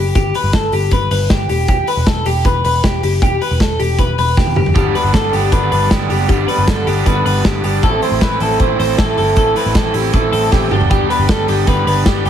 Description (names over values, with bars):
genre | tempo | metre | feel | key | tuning
jangly indie pop | 156 BPM | 4/4 | straight | G major | A4 = 440 Hz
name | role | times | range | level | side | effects
twelve-string electric guitar | arpeggios | 0.0-12.3 s | G4 to C5 | -17 LUFS | left 2 dB | spring reverb
vintage muted picked electric bass | bass | 0.0-12.3 s | E1 to A1 | -18 LUFS | equal | none
loose indie drum kit | drums | 0.2-12.3 s | hi-hat, kick drum, snare drum, toms | -17 LUFS | equal | none
crunchy overdriven guitar | accompaniment | 4.7-12.3 s | G2 to G4 | -20 LUFS | right 6 dB | none
room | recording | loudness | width
moderate studio reverb, RT60 0.9 s | heavily compressed radio sound, multiband compression | -12 LUFS | side -9 dB against mid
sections
0.0-12.3 A section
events
drum fill 4.4-4.8, 10.5-10.9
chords
0.0 G; 1.5 Em; 4.8 G; 7.8 Am; 10.7 G